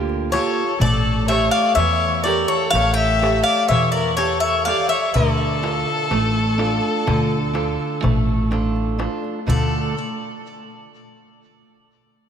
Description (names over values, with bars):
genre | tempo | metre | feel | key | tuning
greek folk, Greek bouzouki band | 124 BPM (eighths) | 9/8 | straight | D harmonic minor | A4 = 440 Hz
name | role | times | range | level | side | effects
picked steel-string acoustic guitar | accompaniment | 0.0-9.9 s | D3 to C#5 | -24 LUFS | right 4 dB | none
upright bass | bass | 0.0-9.9 s | A1 to E2 | -23 LUFS | equal | none
darbuka | percussion | 0.1-9.9 s | none | -25 LUFS | left 3 dB | none
Greek bouzouki | melody | 0.3-9.9 s | C#5 to G5 | -21 LUFS | left 2 dB | ping-pong delay
rich violin | second line | 0.3-9.9 s | A4 to E5 | -24 LUFS | left 3 dB | none
room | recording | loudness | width
wet lush hall reverb, RT60 3.2 s | dreamy mix soaked in reverb | -17 LUFS | side -8 dB against mid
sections
0.0-9.5 A section; 9.5-12.3 B section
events
none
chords
0.0 Gm7; 0.8 A7; 5.1 Dm